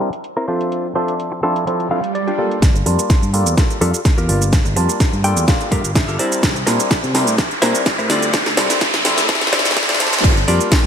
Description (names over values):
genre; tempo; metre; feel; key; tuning
filtered disco house; 126 BPM; 4/4; straight; G dorian; A4 = 440 Hz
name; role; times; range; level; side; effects
clav; accompaniment; 0.0-10.9 s; F3 to A5; -21 LUFS; equal; phaser, sidechain pumping, low-pass filter
house drum kit; drums; 0.1-10.8 s; crash cymbal, hi-hat, shaker, snare drum; -19 LUFS; right 1 dB; sidechain pumping on hats, low-pass filter on hats, sidechain pumping on cymbals, low-pass filter on cymbals, low-pass filter on snare, sidechain pumping on perc, low-pass filter on perc, low-pass filter on room, gated reverb
direct-recorded clean electric guitar; riff; 0.4-10.8 s; C4 to G5; -23 LUFS; left 1 dB; sidechain pumping, low-pass filter
swell and riser; sound effects; 1.8-10.2 s; none; -23 LUFS; equal; none
fingered electric bass; bass; 2.6-10.9 s; G1 to C3; -20 LUFS; equal; sidechain pumping, low-pass filter
electronic kick drum; drums; 2.6-10.8 s; none; -15 LUFS; equal; none
room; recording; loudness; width
moderate lush hall reverb, RT60 1.9 s; bright 1980s-style digital production, high-pass filter; -14 LUFS; side -8 dB against mid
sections
0.0-2.6 A section; 2.6-10.2 B section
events
filter sweep 0.0-2.6, 2.6-10.2; clean electric guitar fill 1.7-2.6, 5.0-6.4; swell 1.8-2.6, 9.3-10.2; build-up 2.6-10.2; drum fill 2.6-10.2; riser 5.1-10.2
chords
0.5 Dm7; 2.6 Gm7; 6.2 C7; 8.1 Dm7; 10.2 Gm7